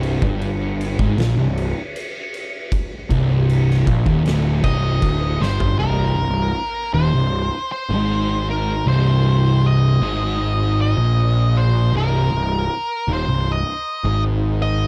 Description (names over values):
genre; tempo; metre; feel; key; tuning
stoner and doom metal; 78 BPM; 4/4; straight; C minor; A4 = 440 Hz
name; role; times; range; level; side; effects
thick fuzz guitar; riff; 0.0-14.9 s; C2 to Bb2; -21 LUFS; equal; distortion
fuzz picked electric bass; bass; 0.0-14.9 s; C1 to Bb1; -24 LUFS; equal; overdrive, tube saturation
oversized low-tuned drum kit; drums; 0.0-5.8 s; crash cymbal, kick drum, snare drum, toms; -27 LUFS; equal; none
octave-fuzz lead guitar; melody; 4.6-14.9 s; Bb4 to Eb5; -26 LUFS; equal; distortion, tape echo
room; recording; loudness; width
little or no reverb; none; -19 LUFS; mono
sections
0.0-5.8 A section; 5.8-14.9 B section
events
drum fill 5.4-5.8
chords
0.0 C5; 5.8 Cm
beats
0.41 1.18 1.95 | 2.72 3.48 4.25 5.02 | 5.79 6.56 7.33 8.10 | 8.87 9.63 10.40 11.17 | 11.94 12.70 13.47 14.24